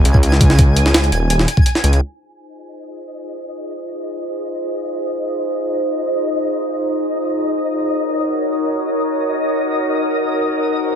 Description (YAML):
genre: drum and bass, jungle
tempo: free time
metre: none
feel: none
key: F phrygian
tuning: A4 = 440 Hz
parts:
  - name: detuned saw bass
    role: bass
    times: 0.0-2.0 s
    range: Eb1 to Db2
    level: -14 LUFS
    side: equal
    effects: none
  - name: twinkling granular texture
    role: texture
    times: 0.0-11.0 s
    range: Eb5 to Ab5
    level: -25 LUFS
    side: left 2 dB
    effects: built-in reverb
  - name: jungle sampler-style drum kit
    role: drums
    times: 0.1-2.0 s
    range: hi-hat, kick drum, snare drum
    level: -13 LUFS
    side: equal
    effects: none
  - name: warbly tape-like pad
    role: sustained chords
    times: 2.8-11.0 s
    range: Eb4 to Db5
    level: -19 LUFS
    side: equal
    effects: chorus, built-in reverb, vintage 12-bit sampler grit
room: light reverb, digital ambience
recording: low-pass filter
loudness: -15 LUFS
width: side -8 dB against mid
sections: 0.0-2.0 A section; 2.0-11.0 B section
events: filter sweep 2.0-11.0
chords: 0.0 Eb7sus4; 2.0 Fm7; 7.7 Ebm7